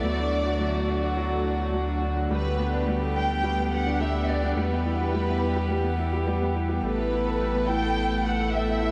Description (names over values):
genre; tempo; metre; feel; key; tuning
electronica; 106 BPM; 4/4; straight; unclear; A4 = 440 Hz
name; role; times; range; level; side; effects
dark studio violin section; melody; 0.0-8.9 s; B4 to G5; -32 LUFS; equal; tape echo, shimmer reverb
warm string quartet; sustained chords; 0.0-8.9 s; D3 to A4; -33 LUFS; equal; shimmer reverb
clear upright piano; riff; 0.0-8.9 s; F#3 to A4; -31 LUFS; equal; tape echo, shimmer reverb
dark detuned saw bass; bass; 0.0-8.9 s; A1 to E2; -31 LUFS; equal; none
room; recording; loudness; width
wet huge ambient reverb, RT60 9.1 s; dreamy mix soaked in reverb; -26 LUFS; mono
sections
0.0-8.9 A section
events
none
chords
0.0 D; 2.3 Gadd9/D; 4.6 Em; 6.8 Asus2